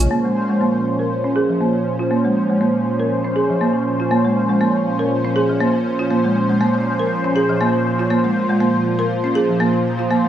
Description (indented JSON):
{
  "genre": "house",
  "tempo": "120 BPM",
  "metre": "4/4",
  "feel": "swing 55% on 16ths",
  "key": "Bb minor",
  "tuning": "A4 = 440 Hz",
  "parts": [
    { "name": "warm analog pad", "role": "sustained chords", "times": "0.0-10.3 s", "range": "Bb2 to C5", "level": "-20 LUFS", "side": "equal", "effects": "chorus" },
    { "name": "folk marimba with soft mallets", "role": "arpeggios", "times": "0.0-10.3 s", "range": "F3 to Bb4", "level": "-18 LUFS", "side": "right 1 dB", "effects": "low-pass filter, digital delay" }
  ],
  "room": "moderate plate reverb, RT60 1.6 s",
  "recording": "none",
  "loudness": "-16 LUFS",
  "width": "side -10 dB against mid",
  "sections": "0.1-10.3 A section",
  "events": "filter sweep on marimba 0.1-10.3",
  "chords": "0.1 Bbm7",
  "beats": "| 0.11 0.61 1.11 1.61 | 2.11 2.61 3.11 3.61 | 4.11 4.61 5.11 5.61 | 6.11 6.61 7.11 7.61 | 8.11 8.61 9.11 9.61 | 10.11"
}